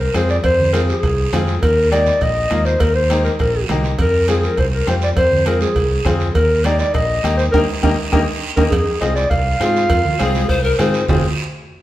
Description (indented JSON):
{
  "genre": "latin, cumbia",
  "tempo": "203 BPM",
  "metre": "4/4",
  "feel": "straight",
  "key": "F dorian",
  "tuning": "A4 = 438 Hz",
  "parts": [
    { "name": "dark clarinet", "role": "melody", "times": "0.0-10.7 s", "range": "Ab4 to F5", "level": "-18 LUFS", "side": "equal", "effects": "none" },
    { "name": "fingered electric bass", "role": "bass", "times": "0.0-11.2 s", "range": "F1 to Ab2", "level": "-20 LUFS", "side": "equal", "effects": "none" },
    { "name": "bright upright piano", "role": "accompaniment", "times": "0.1-11.2 s", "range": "Bb3 to Ab4", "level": "-24 LUFS", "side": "left 4 dB", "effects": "none" },
    { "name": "bombo", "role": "percussion", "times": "0.1-11.2 s", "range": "none", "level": "-22 LUFS", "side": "right 1 dB", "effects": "none" },
    { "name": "congas", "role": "percussion", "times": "0.1-11.2 s", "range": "none", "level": "-27 LUFS", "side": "right 3 dB", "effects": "none" },
    { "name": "cowbell and timbales", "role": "percussion", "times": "0.1-11.2 s", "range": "none", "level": "-28 LUFS", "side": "right 3 dB", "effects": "none" },
    { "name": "guiro", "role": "percussion", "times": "0.1-11.2 s", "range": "none", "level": "-30 LUFS", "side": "right 6 dB", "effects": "none" },
    { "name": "polished pan flute", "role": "second line", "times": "9.6-11.2 s", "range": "F4 to C5", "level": "-20 LUFS", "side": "left 3 dB", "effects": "none" }
  ],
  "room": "wet stone room reverb, RT60 1.3 s",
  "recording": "band playing live in one room",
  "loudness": "-14 LUFS",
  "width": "side -14 dB against mid",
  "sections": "0.0-8.7 A section; 8.7-11.1 B section",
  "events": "drum fill 7.5-8.7; band accent 7.5-8.7",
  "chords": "0.0 Fm; 1.6 Eb; 4.0 Fm; 6.4 Eb; 8.7 Fm"
}